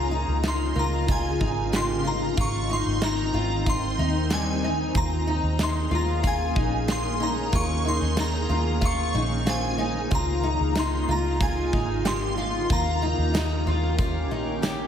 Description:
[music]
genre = dream pop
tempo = 93 BPM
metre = 4/4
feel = straight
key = Eb mixolydian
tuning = A4 = 440 Hz
[part]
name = shimmering bell with halo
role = melody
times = 0.0-14.6 s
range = Ab5 to Db6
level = -30 LUFS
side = equal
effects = ensemble chorus, phaser, analog delay
[part]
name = shimmering ambient pad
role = sustained chords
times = 0.0-14.9 s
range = Db3 to Ab4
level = -30 LUFS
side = right 3 dB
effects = chorus, built-in reverb
[part]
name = fingerpicked twelve-string acoustic guitar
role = arpeggios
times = 0.0-14.9 s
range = G3 to G4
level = -29 LUFS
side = left 5 dB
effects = lush chorus, analog delay
[part]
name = vintage muted fingered electric bass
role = bass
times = 0.0-14.9 s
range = Ab1 to Eb2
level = -27 LUFS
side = equal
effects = none
[part]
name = huge arena drum kit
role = drums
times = 0.4-14.8 s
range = hi-hat, kick drum, snare drum, tambourine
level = -29 LUFS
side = right 1 dB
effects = none
[part]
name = celesta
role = texture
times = 0.8-3.0, 9.5-14.8 s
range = Ab4 to Bb5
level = -41 LUFS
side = right 4 dB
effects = analog delay
[sound]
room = light reverb, small room reverb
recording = echo-heavy mix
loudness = -22 LUFS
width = side -8 dB against mid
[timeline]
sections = 0.0-14.9 A section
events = none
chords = 0.0 Db69; 2.4 Abmaj7; 5.0 Eb7sus4; 10.1 Db69; 12.7 Eb7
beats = 0.44 1.08 1.73 | 2.37 3.02 3.66 4.31 | 4.95 5.60 6.24 6.89 | 7.53 8.18 8.82 9.47 | 10.11 10.76 11.40 12.05 | 12.69 13.34 13.98 14.63

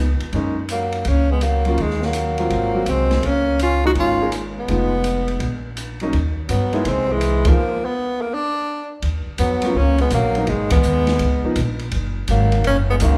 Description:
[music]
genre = jazz, small-group swing and bop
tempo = 166 BPM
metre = 4/4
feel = swing 66% on 8ths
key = Eb minor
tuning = A4 = 440 Hz
[part]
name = breathy tenor saxophone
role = melody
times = 0.0-13.2 s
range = Ab3 to Gb4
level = -23 LUFS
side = equal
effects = none
[part]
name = clear trombone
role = second line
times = 0.0-13.2 s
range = Eb3 to Eb4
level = -31 LUFS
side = equal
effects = none
[part]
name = upright bass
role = bass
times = 0.0-13.2 s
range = F1 to G2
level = -23 LUFS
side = equal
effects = none
[part]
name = open jazz drum kit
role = drums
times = 0.2-13.1 s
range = hi-hat, kick drum, ride cymbal, snare drum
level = -28 LUFS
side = equal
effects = none
[part]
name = clear concert grand piano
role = accompaniment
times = 0.3-13.2 s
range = F3 to Ab4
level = -28 LUFS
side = equal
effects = none
[sound]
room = moderate recital hall reverb, RT60 1.5 s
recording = recorded in a church or concert hall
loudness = -20 LUFS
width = mono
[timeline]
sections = 0.0-9.0 A section; 9.0-13.2 A section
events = band accent 7.4, 10.7; stop 7.6-9.0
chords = 0.3 Gb69; 1.8 Ebm; 2.5 Ab13; 3.2 Db6; 4.7 Fm7b5; 5.4 Bbmadd11; 6.1 Ebm; 6.9 Caug; 7.6 N.C.; 9.0 Ebm7; 10.5 Abm; 11.2 Db13; 11.9 Gb69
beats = | 0.33 0.69 1.06 1.42 | 1.78 2.14 2.51 2.87 | 3.23 3.59 3.96 4.32 | 4.68 5.04 5.41 5.77 | 6.13 6.49 6.86 7.22 | 7.58 7.94 8.31 8.67 | 9.03 9.39 9.76 10.12 | 10.48 10.84 11.21 11.57 | 11.93 12.29 12.65 13.02

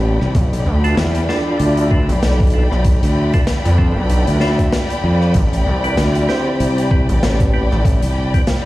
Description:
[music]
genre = glitch hop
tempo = 96 BPM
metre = 4/4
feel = swing 57% on 16ths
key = unclear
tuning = A4 = 440 Hz
[part]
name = gritty driven synth bass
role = bass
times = 0.0-8.0 s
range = A1 to F2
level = -15 LUFS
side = equal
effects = overdrive
[part]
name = dark studio string section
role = texture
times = 0.0-8.7 s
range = D5 to B5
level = -24 LUFS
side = left 2 dB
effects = sidechain pumping
[part]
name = fuzz fingered electric bass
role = bass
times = 0.2-8.3 s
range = C2 to F2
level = -17 LUFS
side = equal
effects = overdrive
[part]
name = big rock drum kit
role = drums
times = 0.2-8.6 s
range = hi-hat, rim click, snare drum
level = -25 LUFS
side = equal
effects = none
[part]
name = electronic kick drum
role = drums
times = 0.3-8.4 s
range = none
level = -16 LUFS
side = equal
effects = none
[part]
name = percussive tonewheel organ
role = stabs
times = 0.8-8.4 s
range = C4 to D5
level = -22 LUFS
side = equal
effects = chorus vibrato, slow rotary speaker, vintage 12-bit sampler grit, sidechain pumping, ping-pong delay
[sound]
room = small room ambience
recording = played on a big sound system in a bare room, large studio reverb, vinyl crackle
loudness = -13 LUFS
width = side -17 dB against mid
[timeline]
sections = 0.0-8.7 A section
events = none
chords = 0.3 Bm7b5; 5.3 Am9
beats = | 0.35 0.97 1.60 2.22 | 2.85 3.47 4.10 4.72 | 5.35 5.97 6.60 7.22 | 7.85 8.47

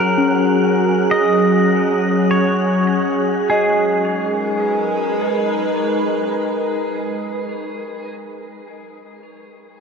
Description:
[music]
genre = ambient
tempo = 52 BPM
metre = 4/4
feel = straight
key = G# minor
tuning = A4 = 440 Hz
[part]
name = pedal steel guitar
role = melody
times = 0.0-8.2 s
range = G#4 to D#5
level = -22 LUFS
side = equal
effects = ping-pong delay
[part]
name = evolving wavetable pad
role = sustained chords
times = 0.0-8.7 s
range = F#3 to B4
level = -18 LUFS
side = right 1 dB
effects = chorus, built-in reverb
[part]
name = worn celesta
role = arpeggios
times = 0.0-9.8 s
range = C#4 to F#6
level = -25 LUFS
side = left 4 dB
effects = ping-pong delay
[part]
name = wind-like tuned noise texture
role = texture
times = 0.0-3.5 s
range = F#5 to F#6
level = -30 LUFS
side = left 3 dB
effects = built-in reverb
[sound]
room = wet huge ambient reverb, RT60 7.3 s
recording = none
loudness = -15 LUFS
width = side -5 dB against mid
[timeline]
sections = 0.0-3.5 A section; 3.5-8.1 B section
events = none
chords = 0.0 F#; 3.5 G#m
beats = 0.01 1.17 2.34 | 3.51 4.66 5.80 6.94

